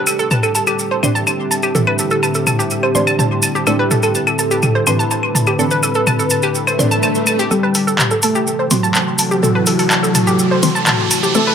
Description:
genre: melodic techno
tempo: 125 BPM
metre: 4/4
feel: straight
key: A dorian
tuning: A4 = 440 Hz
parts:
  - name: analog synth brass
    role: melody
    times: 0.0-11.5 s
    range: F#3 to B4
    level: -20 LUFS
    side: right 1 dB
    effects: chorus, tape echo
  - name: evolving wavetable pad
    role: sustained chords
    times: 0.0-11.5 s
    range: A2 to A4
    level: -22 LUFS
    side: equal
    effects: chorus, built-in reverb
  - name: filtered dub chord stab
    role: stabs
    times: 0.0-11.5 s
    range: A2 to D4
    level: -21 LUFS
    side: right 1 dB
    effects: phaser, tape echo
  - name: analog pluck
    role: arpeggios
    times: 0.1-11.5 s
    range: G4 to C6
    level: -19 LUFS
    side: right 1 dB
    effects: chorus, dub echo
  - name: punchy analog drum machine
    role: drums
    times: 0.1-11.2 s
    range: claves, handclaps, hi-hat, toms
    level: -18 LUFS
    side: left 2 dB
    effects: overdrive, tape echo
  - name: maracas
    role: percussion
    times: 0.1-11.4 s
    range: none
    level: -21 LUFS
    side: right 2 dB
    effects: tape echo
  - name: swell and riser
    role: sound effects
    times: 6.7-11.5 s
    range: none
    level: -22 LUFS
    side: right 1 dB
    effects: none
room: moderate spring reverb, RT60 1.5 s, digital ambience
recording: echo-heavy mix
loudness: -13 LUFS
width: side -8 dB against mid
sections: 0.0-7.5 A section; 7.5-11.5 B section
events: swell 6.7-7.5; build-up 7.5-11.5; riser 7.5-11.5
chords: 0.0 Cadd9/A; 7.5 Am7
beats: 0.31 0.79 1.27 | 1.75 2.23 2.71 3.19 | 3.67 4.15 4.63 5.11 | 5.59 6.07 6.55 7.03 | 7.51 7.99 8.47 8.95 | 9.43 9.91 10.39 10.87 | 11.35

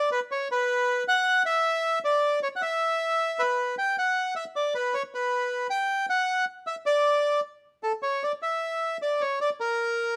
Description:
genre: tango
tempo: 155 BPM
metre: 3/4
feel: rubato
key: unclear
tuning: A4 = 439 Hz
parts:
  - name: bandoneon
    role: solo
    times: 0.0-10.2 s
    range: A4 to G5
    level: -26 LUFS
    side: equal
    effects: none
room: light reverb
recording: none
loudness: -26 LUFS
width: mono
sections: 0.0-8.2 A section; 8.2-10.2 B section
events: none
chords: none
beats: | 0.10 0.49 0.87 | 1.25 1.64 2.02 | 2.41 2.80 3.19 | 3.58 3.97 4.36 | 4.75 5.13 5.51 | 5.89 6.28 6.67 | 7.05 7.44 7.84 | 8.23 8.63 9.02 | 9.41 9.79

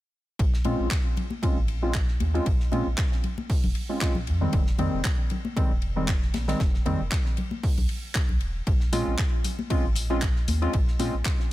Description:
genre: deep house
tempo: 116 BPM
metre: 4/4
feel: swing 54% on 16ths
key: Bb dorian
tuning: A4 = 439 Hz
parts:
  - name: warm sub bass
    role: bass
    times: 0.4-11.2 s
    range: Eb1 to Bb2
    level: -28 LUFS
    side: equal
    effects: tube saturation, sidechain pumping
  - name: damped 70s drum kit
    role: drums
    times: 0.4-11.5 s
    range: hi-hat, ride cymbal, snare drum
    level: -41 LUFS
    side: left 2 dB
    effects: sidechain pumping on cymbals, high-pass filter on cymbals, sidechain pumping on hats, high-pass filter on hats, high-pass filter on snare, high-pass filter on room
  - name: electronic kick drum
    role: drums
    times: 0.4-11.4 s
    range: none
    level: -25 LUFS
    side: equal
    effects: none
  - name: warm analog keys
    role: stabs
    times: 0.6-11.1 s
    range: Eb3 to F4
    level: -29 LUFS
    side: equal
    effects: chorus, vintage 12-bit sampler grit, sidechain pumping, low-pass filter, digital delay
  - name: congas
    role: percussion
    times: 0.7-11.1 s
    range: none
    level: -35 LUFS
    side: left 4 dB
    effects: none
  - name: deep house drum kit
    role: drums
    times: 0.9-11.4 s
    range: handclaps, hi-hat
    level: -33 LUFS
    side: equal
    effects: overdrive
room: small room ambience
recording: none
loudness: -23 LUFS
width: side -16 dB against mid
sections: 0.4-11.5 A section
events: filter sweep on synth keys 0.4-11.5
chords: 0.4 Bbm7; 4.5 Fm7; 8.7 Bbm7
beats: | 0.39 0.91 1.43 1.95 | 2.46 2.98 3.50 4.01 | 4.53 5.05 5.57 6.08 | 6.60 7.12 7.63 8.15 | 8.67 9.19 9.70 10.22 | 10.74 11.26

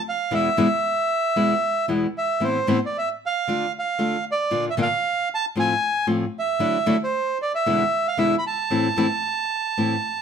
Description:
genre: tango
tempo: 114 BPM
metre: 4/4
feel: rubato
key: A harmonic minor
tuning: A4 = 441 Hz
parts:
  - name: bandoneon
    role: melody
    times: 0.0-10.2 s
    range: C5 to B5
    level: -22 LUFS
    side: right 2 dB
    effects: none
  - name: nylon-string guitar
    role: accompaniment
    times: 0.3-9.9 s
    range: E2 to F4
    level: -23 LUFS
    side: left 2 dB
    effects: none
room: moderate studio reverb, RT60 0.8 s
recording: none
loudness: -20 LUFS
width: side -7 dB against mid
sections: 0.0-10.2 A section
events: none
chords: 0.3 E; 2.4 Amadd9; 3.5 Dm; 4.5 Bb; 5.6 F/A; 6.6 Dadd9; 7.6 E7; 8.7 Am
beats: | 0.31 0.83 1.36 1.88 | 2.42 2.94 3.47 3.99 | 4.51 5.04 5.56 6.08 | 6.60 7.12 7.64 8.17 | 8.70 9.23 9.76

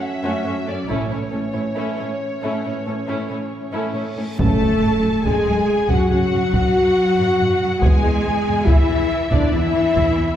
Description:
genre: cinematic, epic orchestral film score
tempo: 70 BPM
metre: 4/4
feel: straight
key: F# minor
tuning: A4 = 440 Hz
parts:
  - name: rich symphonic violin section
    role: melody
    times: 0.0-10.4 s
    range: C#5 to A5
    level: -30 LUFS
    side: left 3 dB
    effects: none
  - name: mellow French horn section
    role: sustained chords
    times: 0.0-10.4 s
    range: E3 to A4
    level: -22 LUFS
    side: left 2 dB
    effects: none
  - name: dark symphonic violin section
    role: second line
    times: 0.2-10.4 s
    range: A3 to A5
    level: -28 LUFS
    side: left 3 dB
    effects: none
  - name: rich symphonic viola section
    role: accompaniment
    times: 0.2-10.4 s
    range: A3 to A4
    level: -28 LUFS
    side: equal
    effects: none
  - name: rich symphonic cello section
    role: bass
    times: 0.2-10.4 s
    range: F#2 to A3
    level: -24 LUFS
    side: right 2 dB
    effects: none
  - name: warm symphonic double bass section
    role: bass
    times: 0.9-10.2 s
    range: A1 to F#2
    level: -24 LUFS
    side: right 2 dB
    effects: none
  - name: reverse cymbal and impact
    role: sound effects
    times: 4.1-7.8 s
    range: none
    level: -32 LUFS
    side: equal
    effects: none
  - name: dark trombone section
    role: sustained chords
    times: 4.4-9.8 s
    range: C#3 to C#4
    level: -28 LUFS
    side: right 1 dB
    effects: none
  - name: taiko ensemble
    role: drums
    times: 4.4-10.4 s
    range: none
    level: -20 LUFS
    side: equal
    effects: none
room: wet scoring stage reverb, RT60 1.6 s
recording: heard from further back in the room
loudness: -17 LUFS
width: side -10 dB against mid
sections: 0.0-4.4 A section; 4.4-10.4 A section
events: reverse cymbal 4.1-4.4; impact 4.4-7.8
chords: 0.0 F#m; 0.9 A; 4.4 F#m; 7.8 E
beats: 0.03 | 0.90 1.78 2.66 3.53 | 4.40 5.26 6.11 6.96 | 7.82 8.68 9.53

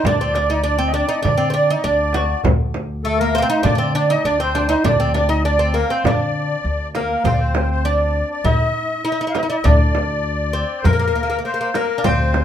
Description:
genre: Arabic maqam ensemble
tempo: 100 BPM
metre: 4/4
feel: straight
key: D maqam hijaz, D maqam bayati from 7.2 s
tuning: A4 = 440 Hz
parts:
  - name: oud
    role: melody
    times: 0.0-12.4 s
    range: A3 to F#4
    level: -20 LUFS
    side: right 2 dB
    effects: none
  - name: musette accordion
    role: second line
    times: 0.0-12.4 s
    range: A4 to F5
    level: -22 LUFS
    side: left 4 dB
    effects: none
  - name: upright bass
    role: bass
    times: 0.0-12.4 s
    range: D2 to D3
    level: -21 LUFS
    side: left 1 dB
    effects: none
  - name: darbuka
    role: percussion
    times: 0.0-12.4 s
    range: none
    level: -24 LUFS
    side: left 1 dB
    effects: none
  - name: frame drum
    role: percussion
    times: 0.0-12.4 s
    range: none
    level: -22 LUFS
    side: right 3 dB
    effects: none
room: moderate studio reverb, RT60 0.5 s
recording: minimal, uncompressed stereo recording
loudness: -16 LUFS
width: side -10 dB against mid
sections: 0.0-7.2 A section; 7.2-12.4 B section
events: none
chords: none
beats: | 0.05 0.65 1.25 1.85 | 2.45 3.05 3.65 4.25 | 4.85 5.45 6.05 6.65 | 7.25 7.85 8.45 9.05 | 9.65 10.24 10.85 11.44 | 12.04

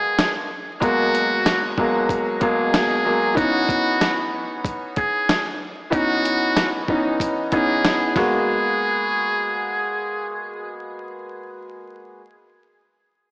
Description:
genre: hip hop, boom-bap hip-hop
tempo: 94 BPM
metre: 4/4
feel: swing 58% on 16ths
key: G# minor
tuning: A4 = 439 Hz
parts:
  - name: trumpet with metal mute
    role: melody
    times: 0.0-10.4 s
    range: F#4 to G#4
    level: -22 LUFS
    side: equal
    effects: high-pass filter, low-pass filter, diffuse ambient delay
  - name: bright upright piano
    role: accompaniment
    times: 0.0-12.2 s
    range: B2 to F#4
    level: -22 LUFS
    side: equal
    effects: cassette tape, high-pass filter, low-pass filter
  - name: dusty soul sampler-style drum kit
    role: drums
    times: 0.2-8.3 s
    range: hi-hat, kick drum, snare drum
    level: -23 LUFS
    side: equal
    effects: none
room: wet lush hall reverb, RT60 2.0 s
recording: dreamy mix soaked in reverb, vinyl crackle, small speaker sound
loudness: -18 LUFS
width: side -28 dB against mid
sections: 0.0-8.5 A section; 8.5-11.0 B section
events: none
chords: 0.0 G#m9; 3.4 C#m9; 8.2 G#m9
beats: 0.18 | 0.82 1.46 2.09 2.73 | 3.37 4.01 4.65 5.29 | 5.92 6.56 7.20 7.84 | 8.48 9.12 9.75 10.39

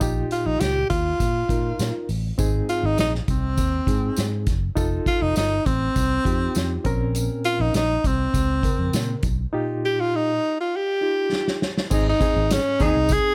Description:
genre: uptempo 1960s-style soul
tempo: 101 BPM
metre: 4/4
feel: straight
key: Ab major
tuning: A4 = 440 Hz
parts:
  - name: barky reed electric piano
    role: accompaniment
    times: 0.0-13.3 s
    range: Ab2 to Bb4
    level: -30 LUFS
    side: equal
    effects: overdrive, fast tremolo, plate reverb
  - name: vintage muted fingered electric bass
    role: bass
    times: 0.0-13.2 s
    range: F1 to Bb2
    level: -28 LUFS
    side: equal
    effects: none
  - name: natural country drum kit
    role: drums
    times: 0.0-13.2 s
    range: crash cymbal, hi-hat, kick drum, snare drum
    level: -28 LUFS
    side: equal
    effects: none
  - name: tambourine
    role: percussion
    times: 0.0-13.2 s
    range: none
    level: -41 LUFS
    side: equal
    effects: none
  - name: breathy tenor saxophone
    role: melody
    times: 0.3-13.3 s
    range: C4 to Ab4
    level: -25 LUFS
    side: equal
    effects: plate reverb
  - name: warm horn section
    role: second line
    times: 12.8-12.9 s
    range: Eb3 to Ab4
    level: -35 LUFS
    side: equal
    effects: plate reverb
room: light reverb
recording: none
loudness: -22 LUFS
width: mono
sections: 0.0-11.9 A section; 11.9-13.3 B section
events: drum fill 11.3-11.9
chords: 0.0 Ebadd9/Bb; 2.4 Ab; 4.8 F7; 6.8 Bbmadd9; 9.5 Ebadd9/Bb; 11.9 Ab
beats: | 0.01 0.61 1.20 1.80 | 2.39 2.98 3.58 4.17 | 4.77 5.36 5.96 6.55 | 7.15 7.74 8.34 8.93 | 9.53 10.12 10.72 11.31 | 11.91 12.50 13.10

